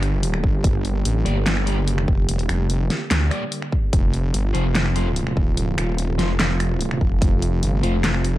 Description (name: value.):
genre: heavy wobble dubstep.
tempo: 146 BPM.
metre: 4/4.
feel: half-time.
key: G minor.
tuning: A4 = 439 Hz.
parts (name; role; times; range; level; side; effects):
supersaw pad; sustained chords; 0.0-8.4 s; C3 to G4; -28 LUFS; right 1 dB; sidechain pumping, low-pass filter.
wobble bass; bass; 0.0-8.4 s; Eb1 to D2; -21 LUFS; equal; chorus, overdrive.
big-room dance drum kit; drums; 0.0-8.3 s; finger snaps, handclaps, hi-hat, snare drum; -25 LUFS; equal; none.
electronic kick drum; drums; 0.4-7.3 s; none; -19 LUFS; equal; none.
fuzz guitar; stabs; 1.3-7.9 s; A3 to D5; -30 LUFS; left 2 dB; distortion, tape echo.
room: digital ambience.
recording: dark, warm production.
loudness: -18 LUFS.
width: side -15 dB against mid.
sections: 0.0-8.4 A section.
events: none.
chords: 0.0 Gm; 3.9 F.